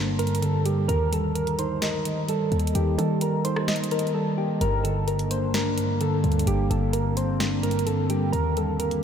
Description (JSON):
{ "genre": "hip hop, trap", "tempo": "129 BPM", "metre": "4/4", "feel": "half-time", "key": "G minor", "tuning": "A4 = 442 Hz", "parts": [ { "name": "mellow tine electric piano", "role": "accompaniment", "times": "0.0-9.0 s", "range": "G2 to Eb5", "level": "-25 LUFS", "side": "right 1 dB", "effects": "analog chorus, low-pass filter" }, { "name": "short 808-style bass", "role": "bass", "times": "0.0-9.0 s", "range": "G1 to Eb3", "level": "-28 LUFS", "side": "equal", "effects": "none" }, { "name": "soft electric-piano-like synth keys", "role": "melody", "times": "0.2-9.0 s", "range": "G4 to C5", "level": "-28 LUFS", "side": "equal", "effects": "chorus, phaser, low-pass filter, ping-pong delay" }, { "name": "trap drum kit", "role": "drums", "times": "0.2-9.0 s", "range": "hi-hat, rim click, snare drum", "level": "-33 LUFS", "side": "equal", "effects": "none" }, { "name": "warbly tape-like pad", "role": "sustained chords", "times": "5.0-9.0 s", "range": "Eb3 to G4", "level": "-32 LUFS", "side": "left 2 dB", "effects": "chorus, built-in reverb" } ], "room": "wet cathedral reverb, RT60 6.4 s", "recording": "dreamy mix soaked in reverb", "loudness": "-22 LUFS", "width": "side -8 dB against mid", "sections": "0.0-9.0 A section", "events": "drums muted 4.1-4.6", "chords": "0.0 Gm; 0.9 Eb; 4.6 Gm; 8.3 Eb" }